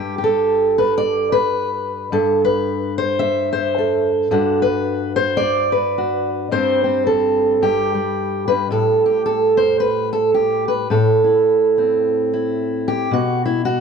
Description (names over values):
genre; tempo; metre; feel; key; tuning
folk, solo fingerstyle acoustic guitar; 109 BPM; 4/4; swing 59% on 8ths; unclear; A4 = 442 Hz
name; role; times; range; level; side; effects
fingerpicked steel-string acoustic guitar; solo; 0.0-13.8 s; G2 to E5; -16 LUFS; right 1 dB; none
room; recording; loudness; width
light reverb; dark, warm production; -15 LUFS; side -6 dB against mid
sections
0.0-8.7 A section; 8.7-13.8 B section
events
none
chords
0.0 N.C.; 2.1 Amadd9/G; 4.3 D/G; 6.5 C5/G; 7.6 N.C.; 8.7 Am7; 13.1 N.C.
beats
0.47 1.02 1.57 | 2.12 2.67 3.22 3.77 | 4.32 4.87 5.42 5.97 | 6.52 7.07 7.62 8.17 | 8.72 9.27 9.81 10.36 | 10.91 11.46 12.01 12.56 | 13.11 13.66